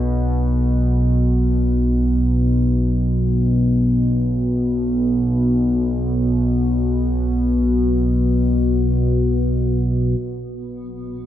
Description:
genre	dark ambient drone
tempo	free time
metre	none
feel	none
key	unclear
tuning	A4 = 437 Hz
part	analog drone	drone	0.0-11.3 s	B1 to B2	-16 LUFS	equal	chorus
part	granular cloud pad	sustained chords	10.6-11.3 s	B3	-35 LUFS	left 2 dB	built-in reverb
room	wet huge ambient reverb, RT60 8.0 s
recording	none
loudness	-16 LUFS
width	side -12 dB against mid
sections	0.0-10.2 A section; 10.2-11.3 B section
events	none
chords	0.0 N.C.; 10.2 Bsus2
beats	free time

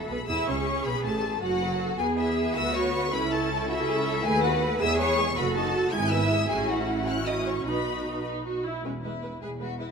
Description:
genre	quick classical-period movement for string orchestra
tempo	106 BPM (dotted quarters)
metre	6/8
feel	straight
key	A major, E major from 4.2 s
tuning	A4 = 436 Hz
part	rich symphonic violin section	melody	0.0-9.9 s	E5 to G#6	-30 LUFS	left 5 dB	none
part	rich symphonic cello section	bass	0.0-9.9 s	E2 to B4	-31 LUFS	right 2 dB	none
part	rich symphonic violin section	second line	0.1-9.9 s	C#4 to G#5	-32 LUFS	left 2 dB	none
part	rich symphonic viola section	accompaniment	0.1-9.9 s	F#3 to B4	-30 LUFS	right 2 dB	none
part	rich symphonic double bass section	bass	0.1-9.9 s	E1 to E2	-32 LUFS	right 2 dB	none
room	moderate scoring stage reverb, RT60 2.0 s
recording	none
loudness	-24 LUFS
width	side -6 dB against mid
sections	0.0-8.8 A section; 8.8-9.9 B section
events	none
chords	0.3 C#m; 0.8 F#madd11; 2.0 E; 2.6 Dmaj13; 3.1 A/C#; 4.2 B7/D#; 4.8 E; 5.4 D#dim/F#; 5.9 E/G#; 6.5 F#m/A; 7.7 B; 8.8 E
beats	0.28 | 0.85 1.42 | 1.99 2.56 | 3.13 3.69 | 4.25 4.81 | 5.37 5.93 | 6.50 7.08 | 7.66 8.25 | 8.85 9.42

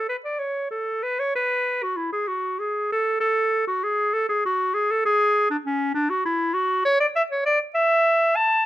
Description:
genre	classical, baroque-style fantasia for unaccompanied clarinet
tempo	65 BPM (dotted quarters)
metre	6/8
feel	rubato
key	A major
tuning	A4 = 442 Hz
part	bright clarinet	solo	0.0-8.7 s	C#4 to A5	-20 LUFS	equal	none
room	little or no reverb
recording	close, detailed microphones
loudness	-20 LUFS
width	side -14 dB against mid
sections	0.0-8.7 A section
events	none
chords	none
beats	0.41 | 1.35 2.29 | 3.21 4.14 | 5.05 5.95 | 6.85 7.75

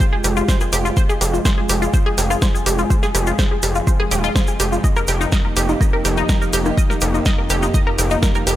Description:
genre	melodic techno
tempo	124 BPM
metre	4/4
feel	straight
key	F minor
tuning	A4 = 442 Hz
part	dark analog pad	sustained chords	0.0-8.6 s	Ab3 to Ab4	-25 LUFS	right 1 dB	chorus, sidechain pumping
part	tight sequenced synth	arpeggios	0.0-8.5 s	Eb4 to Eb5	-22 LUFS	left 1 dB	chorus, sidechain pumping, tape echo
part	bowed-like drone	drone	0.1-8.6 s	F2	-29 LUFS	left 1 dB	built-in reverb, sidechain pumping
part	electronic kick drum	drums	0.0-8.3 s	none	-17 LUFS	equal	overdrive
part	tube shaker	percussion	0.0-8.6 s	none	-28 LUFS	right 2 dB	none
part	gritty driven synth bass	bass	0.2-8.6 s	Eb1 to F1	-20 LUFS	equal	sidechain pumping
part	deep house drum kit	drums	0.2-8.6 s	hi-hat, rim click, snare drum	-24 LUFS	left 1 dB	overdrive
room	little or no reverb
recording	none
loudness	-15 LUFS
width	side -13 dB against mid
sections	0.0-8.6 A section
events	none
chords	0.0 Fmadd9; 4.8 Eb/F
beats	0.00 0.48 | 0.97 1.45 1.94 2.42 | 2.90 3.39 3.87 4.36 | 4.84 5.32 5.81 6.29 | 6.78 7.26 7.74 8.23

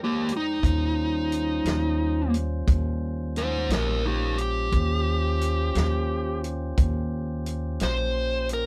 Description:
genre	slow blues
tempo	58 BPM (dotted quarters)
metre	12/8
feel	straight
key	unclear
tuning	A4 = 440 Hz
part	dark smooth lead guitar	melody	0.0-8.7 s	Bb3 to C5	-29 LUFS	equal	overdrive
part	tonewheel organ	sustained chords	0.0-8.7 s	G3 to G5	-37 LUFS	equal	stopped rotary speaker
part	upright bass	bass	0.0-8.7 s	Bb1 to F2	-29 LUFS	equal	none
part	warm soul drum kit	drums	0.3-8.6 s	hi-hat, kick drum, snare drum	-29 LUFS	equal	none
room	light reverb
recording	band playing live in one room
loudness	-26 LUFS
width	mono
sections	0.0-8.7 A section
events	none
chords	0.0 Bb13; 0.6 Eb13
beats	| 0.63 1.65 2.68 3.71 | 4.73 5.76 6.78 7.80

